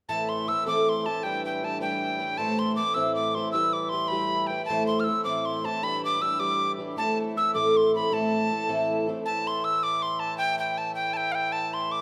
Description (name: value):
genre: celtic folk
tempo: 105 BPM (dotted quarters)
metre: 6/8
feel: straight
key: A minor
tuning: A4 = 440 Hz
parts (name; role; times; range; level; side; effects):
- breathy bright tin whistle; melody; 0.1-12.0 s; F5 to F6; -29 LUFS; equal; none
- picked plugged-in twelve-string acoustic guitar; accompaniment; 0.1-9.3 s; A2 to C5; -30 LUFS; equal; none
- accordion; drone; 0.1-12.0 s; A2 to E3; -39 LUFS; equal; none
room: wet recital hall reverb, RT60 1.6 s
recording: none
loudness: -26 LUFS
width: mono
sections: 0.1-9.3 A section; 9.3-12.0 A section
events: none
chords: 0.1 Am; 1.2 G; 2.4 Am; 3.5 Em; 4.7 Am; 5.8 G; 7.0 Am; 9.3 A5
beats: | 0.10 0.67 | 1.24 1.82 | 2.39 2.96 | 3.54 4.11 | 4.68 5.25 | 5.83 6.40 | 6.97 7.54 | 8.12 8.69 | 9.26 9.83 | 10.40 10.98 | 11.55